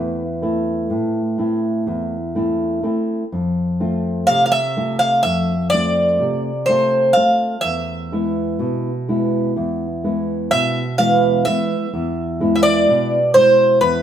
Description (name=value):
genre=greek folk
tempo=125 BPM (eighths)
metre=9/8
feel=straight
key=E phrygian dominant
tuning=A4 = 445 Hz
part: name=Greek bouzouki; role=melody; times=0.0-14.0 s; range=B4 to F5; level=-16 LUFS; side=right 1 dB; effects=none
part: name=nylon-string guitar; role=accompaniment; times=0.0-14.0 s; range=E2 to F4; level=-19 LUFS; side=equal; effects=none
room=wet stone room reverb, RT60 1.0 s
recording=band playing live in one room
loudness=-16 LUFS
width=side -9 dB against mid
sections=0.0-11.9 A section; 11.9-14.0 B section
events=none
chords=0.0 Am; 3.3 F; 7.6 E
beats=0.42 0.90 1.39 1.87 2.35 2.84 | 3.32 3.80 4.28 4.76 5.25 5.73 6.21 6.69 7.17 | 7.64 8.12 8.60 9.08 9.56 10.03 10.51 10.98 11.46 | 11.93 12.41 12.88 13.35 13.83